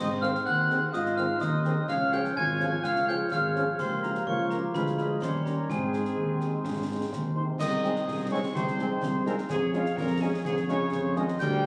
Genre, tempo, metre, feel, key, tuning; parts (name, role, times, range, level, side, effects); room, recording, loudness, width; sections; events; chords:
military-style march for wind band; 126 BPM; 2/4; straight; Ab major; A4 = 438 Hz
dark cornet; melody; 0.0-11.7 s; F4 to Ab5; -36 LUFS; equal
clear euphonium; second line; 0.0-11.7 s; F2 to Ab4; -36 LUFS; equal
glockenspiel with hard plastic mallets; second line; 0.0-7.1 s; Ab5 to Ab6; -36 LUFS; equal
mellow wooden piccolo; second line; 0.0-11.7 s; F5 to Ab6; -38 LUFS; equal
warm woodwind section; second line; 0.0-11.7 s; Eb4 to F5; -41 LUFS; equal
mellow tuba; bass; 0.0-11.7 s; Ab1 to Ab2; -34 LUFS; equal
dark French horn section; accompaniment; 0.2-11.7 s; G3 to Ab4; -41 LUFS; equal
warm trombone section; sustained chords; 0.2-11.7 s; Eb3 to Db4; -37 LUFS; equal
concert snare drum, concert bass drum and clash cymbals; drums; 0.2-11.7 s; -40 LUFS; equal
moderate large studio reverb, RT60 1.0 s; recorded on a phone in the room, studio reverb; -28 LUFS; mono
0.0-7.6 A section; 7.6-11.7 B section
0.0 Ab; 1.9 Db; 3.8 Bbm/Db; 4.7 Ddim7; 5.2 Eb7; 5.7 Ab; 7.6 Ab/C; 9.5 Db/F